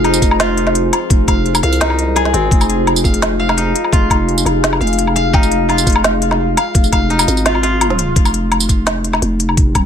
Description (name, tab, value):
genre	half-time drum and bass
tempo	170 BPM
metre	4/4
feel	half-time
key	F minor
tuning	A4 = 440 Hz
part	deep dark ambient pad	sustained chords	0.0-9.9 s	F4 to G5	-20 LUFS	left 1 dB	chorus, built-in reverb, sidechain pumping
part	koto	arpeggios	0.0-9.8 s	C4 to F5	-21 LUFS	left 1 dB	vintage 12-bit sampler grit, ping-pong delay
part	growling 808-style bass	bass	0.0-9.9 s	Eb1 to C2	-16 LUFS	equal	none
part	organic electronic drum kit	drums	0.0-9.8 s	hi-hat, snare drum, tambourine, woodblock	-17 LUFS	left 1 dB	none
part	electronic kick drum	drums	0.2-9.8 s	none	-13 LUFS	equal	none
room	light reverb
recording	lossy compression artefacts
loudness	-12 LUFS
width	side -8 dB against mid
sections	0.0-8.2 A section; 8.2-9.9 A section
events	drop 0.0-8.2, 8.2-9.9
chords	0.0 Fm; 8.2 F5